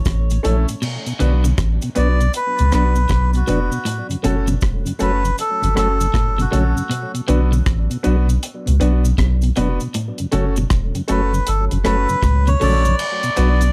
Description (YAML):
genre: roots reggae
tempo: 79 BPM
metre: 4/4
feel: swing 64% on 16ths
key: B minor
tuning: A4 = 440 Hz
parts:
  - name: soft dub sub bass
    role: bass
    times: 0.1-13.7 s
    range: E1 to C#2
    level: -19 LUFS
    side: equal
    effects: none
  - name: deep reggae drum kit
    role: drums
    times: 0.1-13.7 s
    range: crash cymbal, hi-hat, kick drum, rim click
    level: -25 LUFS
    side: equal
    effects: none
  - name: cabasa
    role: percussion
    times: 0.1-13.7 s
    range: none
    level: -39 LUFS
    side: equal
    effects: none
  - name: mellow tonewheel organ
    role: accompaniment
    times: 0.3-13.7 s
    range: F#2 to D4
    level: -27 LUFS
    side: equal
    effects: slow rotary speaker, tape echo
  - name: clear upright piano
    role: stabs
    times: 0.4-13.6 s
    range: A3 to B4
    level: -26 LUFS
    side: equal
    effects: none
  - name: clean electric guitar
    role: arpeggios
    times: 0.8-12.8 s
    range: A2 to D3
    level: -27 LUFS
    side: equal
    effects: spring reverb
  - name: melodica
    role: melody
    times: 2.0-13.7 s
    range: F#4 to D5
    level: -24 LUFS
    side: equal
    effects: tape echo
room: light reverb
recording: none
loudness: -18 LUFS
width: mono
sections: 0.8-13.0 A section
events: melodica solo 0.8-13.0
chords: 0.0 A; 0.8 Bm; 3.9 F#m; 6.9 Bm; 9.9 F#m; 13.0 Bm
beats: 0.06 | 0.82 1.58 2.34 3.10 | 3.86 4.62 5.38 6.14 | 6.90 7.66 8.43 9.19 | 9.95 10.71 11.47 12.23 | 12.99